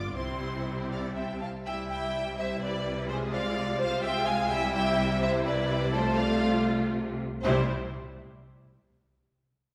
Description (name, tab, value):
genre	quick classical-period movement for string orchestra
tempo	75-86 BPM (dotted quarters)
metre	6/8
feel	rubato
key	C major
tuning	A4 = 440 Hz
part	rich studio violin section	melody	0.0-7.7 s	C5 to D6	-36 LUFS	equal	none
part	warm studio violin section	second line	0.0-7.7 s	Ab4 to F5	-35 LUFS	equal	none
part	rich studio viola section	accompaniment	0.0-7.7 s	G3 to F4	-34 LUFS	equal	none
part	rich studio cello section	bass	0.0-7.7 s	G2 to C3	-37 LUFS	equal	none
part	warm studio double bass section	bass	0.0-7.7 s	G1 to C2	-39 LUFS	equal	none
room	wet recital hall reverb, RT60 1.6 s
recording	recorded in a church or concert hall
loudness	-29 LUFS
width	mono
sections	0.0-1.7 A section; 1.7-7.4 B section; 7.4-9.0 C section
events	none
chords	0.2 C; 3.1 Fm/C; 4.5 C; 5.9 F/C; 7.4 C